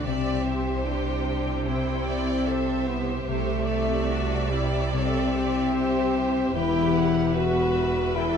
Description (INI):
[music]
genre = cinematic, emotional film score for orchestra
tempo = 74 BPM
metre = 4/4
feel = rubato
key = unclear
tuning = A4 = 441 Hz
[part]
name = rich symphonic violin section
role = melody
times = 0.0-8.4 s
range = E5 to G5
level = -37 LUFS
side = left 3 dB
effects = none
[part]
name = warm symphonic violin section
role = second line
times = 0.0-8.4 s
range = B4 to D5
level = -34 LUFS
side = left 2 dB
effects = none
[part]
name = rich symphonic viola section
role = accompaniment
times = 0.0-8.4 s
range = E4 to B4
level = -34 LUFS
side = right 2 dB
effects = none
[part]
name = clear French horn section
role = sustained chords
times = 0.0-8.4 s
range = G3 to F#4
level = -26 LUFS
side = left 2 dB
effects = none
[part]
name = concert harp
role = arpeggios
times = 0.0-8.4 s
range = C3 to B5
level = -31 LUFS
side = left 12 dB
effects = none
[part]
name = rich symphonic cello section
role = bass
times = 0.0-8.4 s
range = E2 to C3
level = -32 LUFS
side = right 5 dB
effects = none
[part]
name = rich symphonic double bass section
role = bass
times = 0.0-8.4 s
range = E1 to C2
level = -31 LUFS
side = right 4 dB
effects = none
[sound]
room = light reverb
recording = close, detailed microphones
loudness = -22 LUFS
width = side -7 dB against mid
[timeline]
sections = 0.0-8.4 A section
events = none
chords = 0.1 C; 6.6 Em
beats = | 0.06 0.86 1.67 2.47 | 3.28 4.10 4.94 5.75 | 6.55 7.36 8.17